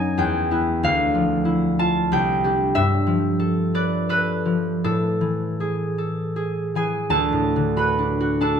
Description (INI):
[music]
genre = classical, solo harp piece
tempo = 76-94 BPM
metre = 3/4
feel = rubato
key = unclear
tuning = A4 = 440 Hz
[part]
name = concert harp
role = solo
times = 0.0-8.6 s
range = C2 to B5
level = -19 LUFS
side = equal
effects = none
[sound]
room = moderate stone room reverb, RT60 1.2 s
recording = none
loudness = -19 LUFS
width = side -7 dB against mid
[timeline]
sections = 0.0-7.1 A section; 7.1-8.6 B section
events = none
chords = 0.2 Emadd9; 0.8 Dmadd9; 2.1 Csus2; 2.8 G9; 4.8 Asus2; 7.1 D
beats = 0.18 | 0.83 1.48 2.11 | 2.75 3.40 4.07 | 4.82 5.59 6.37 | 7.13 7.79 8.44